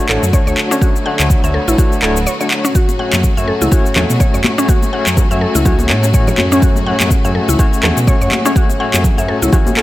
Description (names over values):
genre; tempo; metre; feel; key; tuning
afro house; 124 BPM; 4/4; swing 57% on 16ths; F# minor; A4 = 435 Hz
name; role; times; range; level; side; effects
rich studio string section; sustained chords; 0.0-9.8 s; A2 to C#5; -23 LUFS; left 1 dB; vintage 12-bit sampler grit, sidechain pumping
overdriven tine electric piano; stabs; 0.0-9.8 s; A3 to C#5; -19 LUFS; left 2 dB; fast tremolo, sidechain pumping, digital delay
mallet-like synth pluck; arpeggios; 0.1-9.8 s; C#4 to F#5; -20 LUFS; equal; chorus, sidechain pumping, digital delay
dark detuned saw bass; bass; 0.1-9.5 s; D1 to B2; -17 LUFS; equal; sidechain pumping
electronic handclaps and shaker; drums; 0.1-9.8 s; none; -19 LUFS; left 1 dB; none
electronic kick drum; drums; 0.3-9.6 s; none; -13 LUFS; equal; none
congas; percussion; 2.9-9.7 s; none; -21 LUFS; left 1 dB; none
room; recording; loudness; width
digital ambience; none; -11 LUFS; side -16 dB against mid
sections
0.0-9.8 A section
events
break 2.3-2.8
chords
0.0 Dmaj7; 2.8 F#m